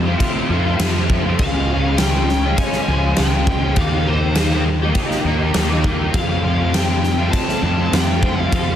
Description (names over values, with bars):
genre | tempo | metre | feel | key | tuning
rock, shoegaze and dream pop | 101 BPM | 4/4 | straight | F mixolydian | A4 = 440 Hz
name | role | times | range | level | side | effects
crunchy overdriven guitar | riff | 0.0-8.8 s | F2 to G4 | -20 LUFS | equal | ensemble chorus
fuzz fingered electric bass | bass | 0.0-8.8 s | Db2 to F2 | -20 LUFS | equal | overdrive
huge arena drum kit | drums | 0.2-8.7 s | crash cymbal, kick drum, snare drum | -20 LUFS | equal | none
smooth overdriven lead guitar | melody | 1.4-8.8 s | C5 to A5 | -26 LUFS | left 1 dB | digital delay
room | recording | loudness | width
light reverb | dense, heavily limited modern master | -15 LUFS | side -10 dB against mid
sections
0.0-8.8 A section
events
none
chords
0.0 F; 1.4 Db; 3.8 Eb; 6.1 Fadd9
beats
0.19 0.79 | 1.38 1.98 2.57 3.17 | 3.76 4.36 4.95 5.54 | 6.14 6.73 7.33 7.92 | 8.52